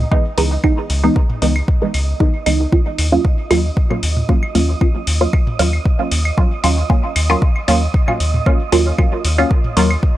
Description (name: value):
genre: dub techno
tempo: 115 BPM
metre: 4/4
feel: straight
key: unclear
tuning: A4 = 440 Hz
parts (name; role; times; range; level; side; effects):
- round analog bass; bass; 0.0-10.0 s; C#2 to D#2; -17 LUFS; equal; tube saturation, sidechain pumping
- wind-like tuned noise texture; texture; 0.0-10.2 s; D#5; -29 LUFS; right 7 dB; built-in reverb, sidechain pumping
- filtered dub chord stab; stabs; 0.1-9.9 s; E3 to E#4; -18 LUFS; right 1 dB; phaser, sidechain pumping, dub echo
- electronic kick drum; drums; 0.1-10.1 s; none; -15 LUFS; equal; none
- electronic claves and toms; percussion; 0.1-10.0 s; none; -26 LUFS; right 1 dB; sidechain pumping on perc, sidechain pumping on toms, dub echo
- electronic hi-hat; drums; 0.4-9.9 s; none; -24 LUFS; left 2 dB; none
room: little or no reverb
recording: dry, gritty hardware recording, transformer saturation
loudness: -13 LUFS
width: side -14 dB against mid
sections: 0.0-10.2 A section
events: none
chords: 0.0 C#m9; 2.7 D#m9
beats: 0.12 | 0.64 1.16 1.68 2.20 | 2.72 3.25 3.77 4.29 | 4.81 5.33 5.85 6.38 | 6.90 7.42 7.94 8.46 | 8.98 9.51 10.03